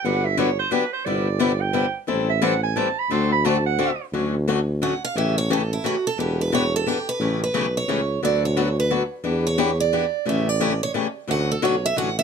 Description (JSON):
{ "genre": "acoustic string swing (jazz manouche)", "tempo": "176 BPM", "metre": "3/4", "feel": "swing 61% on 8ths", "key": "D major from 4.1 s", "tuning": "A4 = 440 Hz", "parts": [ { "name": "bright clarinet", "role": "second line", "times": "0.0-4.0 s", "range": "B4 to C6", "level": "-24 LUFS", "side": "right 8 dB", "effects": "none" }, { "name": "picked swing-style acoustic guitar", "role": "accompaniment", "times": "0.0-12.1 s", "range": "C3 to A4", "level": "-23 LUFS", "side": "left 5 dB", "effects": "none" }, { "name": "mellow tuba", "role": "bass", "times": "0.0-12.2 s", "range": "E1 to E2", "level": "-24 LUFS", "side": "equal", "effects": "none" }, { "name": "picked steel-string acoustic guitar", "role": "melody", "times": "4.8-12.2 s", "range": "E4 to F#5", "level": "-24 LUFS", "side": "right 5 dB", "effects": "none" } ], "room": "light reverb", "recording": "none", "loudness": "-20 LUFS", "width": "side -6 dB against mid", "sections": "0.0-4.1 A section; 4.1-12.2 A section", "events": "clarinet solo 0.0-4.1; steel-string acoustic guitar solo 4.1-12.2", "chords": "0.0 Gmaj7; 1.1 Cmaj7/G; 2.1 Am7; 3.1 D7; 4.1 Dmaj7; 5.2 A7; 6.2 Em7; 7.2 A7; 8.2 D6; 9.2 Em7; 10.3 A7; 11.3 Dmaj7" }